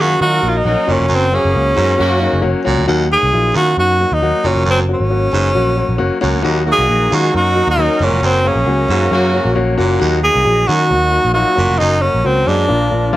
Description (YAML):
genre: soul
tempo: 134 BPM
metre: 4/4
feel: straight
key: unclear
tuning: A4 = 436 Hz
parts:
  - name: breathy tenor saxophone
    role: melody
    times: 0.0-13.2 s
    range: C4 to Ab4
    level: -15 LUFS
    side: right 1 dB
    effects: none
  - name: warm horn section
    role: second line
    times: 0.0-2.4, 6.7-9.5 s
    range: Db3 to Bb4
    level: -21 LUFS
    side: right 2 dB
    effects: none
  - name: warm concert grand piano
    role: accompaniment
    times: 0.0-13.2 s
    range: F3 to Ab4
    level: -19 LUFS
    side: left 4 dB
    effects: none
  - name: edgy baritone saxophone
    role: riff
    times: 0.0-12.7 s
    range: Eb2 to Bb2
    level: -21 LUFS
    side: right 4 dB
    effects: none
  - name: vintage muted picked electric bass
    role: bass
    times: 0.0-13.2 s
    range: F1 to Eb3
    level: -17 LUFS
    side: equal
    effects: none
  - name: tonewheel organ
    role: sustained chords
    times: 6.5-13.2 s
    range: F4 to Bb5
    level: -28 LUFS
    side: equal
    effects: none
room: moderate studio reverb, RT60 0.7 s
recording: none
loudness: -12 LUFS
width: side -15 dB against mid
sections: 0.0-13.2 A section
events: none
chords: 0.0 Ebm; 0.9 Gb; 2.9 Ebm; 4.4 Gb; 6.4 Ebm; 8.0 Gb; 10.0 Ebm; 11.6 Gb